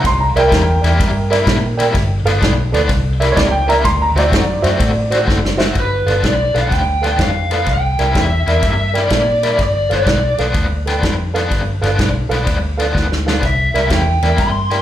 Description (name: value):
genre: electric blues shuffle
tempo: 125 BPM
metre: 4/4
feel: swing 67% on 8ths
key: unclear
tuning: A4 = 440 Hz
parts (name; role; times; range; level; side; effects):
- dark upright piano; second line; 0.0-5.6 s; Bb4 to C6; -18 LUFS; right 2 dB; slapback echo
- biting overdriven guitar; riff; 0.0-14.8 s; G2 to F#4; -21 LUFS; left 3 dB; tremolo, slapback echo
- vintage muted fingered electric bass; bass; 0.0-14.8 s; F#1 to Bb2; -18 LUFS; equal; none
- natural country drum kit; drums; 0.0-14.8 s; kick drum, ride cymbal, snare drum; -19 LUFS; equal; none
- reed electric piano; accompaniment; 0.4-14.8 s; F#4 to G5; -22 LUFS; right 4 dB; fast tremolo, slapback echo
- lead guitar through a small cranked amp; melody; 5.8-10.4, 13.5-14.8 s; B4 to C6; -18 LUFS; equal; overdrive, slapback echo
room: light reverb, small room ambience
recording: live gig heard through the venue's PA, club reverb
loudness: -13 LUFS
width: side -12 dB against mid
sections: 0.0-5.8 A section; 5.8-14.8 B section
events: upright piano solo 0.0-5.8; drum fill 5.3-5.8, 12.9-13.4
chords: 0.0 C7; 1.9 G7; 2.9 C7; 3.8 D7; 5.8 G7; 7.7 C7; 9.6 G7; 13.4 C7